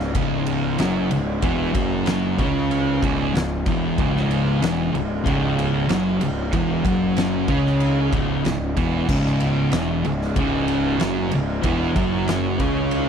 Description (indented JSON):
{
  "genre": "stoner and doom metal",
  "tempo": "94 BPM",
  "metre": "4/4",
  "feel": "straight",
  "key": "C# minor",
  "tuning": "A4 = 440 Hz",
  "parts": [
    { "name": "thick fuzz guitar", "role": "riff", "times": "0.0-13.1 s", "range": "C#2 to C#4", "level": "-24 LUFS", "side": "left 9 dB", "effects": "distortion" },
    { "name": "thick fuzz guitar", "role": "riff", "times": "0.0-13.1 s", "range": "C#2 to C#4", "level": "-23 LUFS", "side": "right 9 dB", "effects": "distortion" },
    { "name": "fuzz picked electric bass", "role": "bass", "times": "0.0-13.1 s", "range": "C#1 to C#2", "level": "-26 LUFS", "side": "equal", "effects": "overdrive" },
    { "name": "oversized low-tuned drum kit", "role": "drums", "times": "0.0-13.1 s", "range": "crash cymbal, kick drum, ride cymbal, snare drum", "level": "-25 LUFS", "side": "equal", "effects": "none" }
  ],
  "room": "little or no reverb",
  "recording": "none",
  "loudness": "-19 LUFS",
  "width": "side -7 dB against mid",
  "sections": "0.0-13.1 A section",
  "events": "none",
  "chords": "0.0 C#m"
}